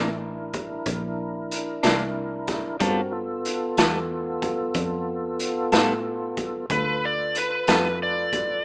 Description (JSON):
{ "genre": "slow blues", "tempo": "62 BPM (dotted quarters)", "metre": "12/8", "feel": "straight", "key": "unclear", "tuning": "A4 = 443 Hz", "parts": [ { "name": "clean electric guitar", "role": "accompaniment", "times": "0.0-7.9 s", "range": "C3 to A4", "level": "-23 LUFS", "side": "equal", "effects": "tremolo" }, { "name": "tonewheel organ", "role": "sustained chords", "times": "0.0-8.6 s", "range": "B3 to B4", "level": "-28 LUFS", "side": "equal", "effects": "slow rotary speaker, overdrive, chorus vibrato" }, { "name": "vintage muted fingered electric bass", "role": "bass", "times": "0.0-8.6 s", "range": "A1 to A2", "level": "-32 LUFS", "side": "equal", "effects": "none" }, { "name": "raw garage drum kit", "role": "drums", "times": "0.5-8.5 s", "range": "hi-hat, kick drum, snare drum", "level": "-25 LUFS", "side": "equal", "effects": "none" }, { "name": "overdriven slide guitar", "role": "melody", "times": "6.7-8.6 s", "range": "B4 to D5", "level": "-23 LUFS", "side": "equal", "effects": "none" } ], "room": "light reverb", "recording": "rough home demo mix, small speaker sound", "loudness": "-22 LUFS", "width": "side -35 dB against mid", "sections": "0.0-8.6 A section", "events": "none", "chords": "0.0 C9; 2.8 G9" }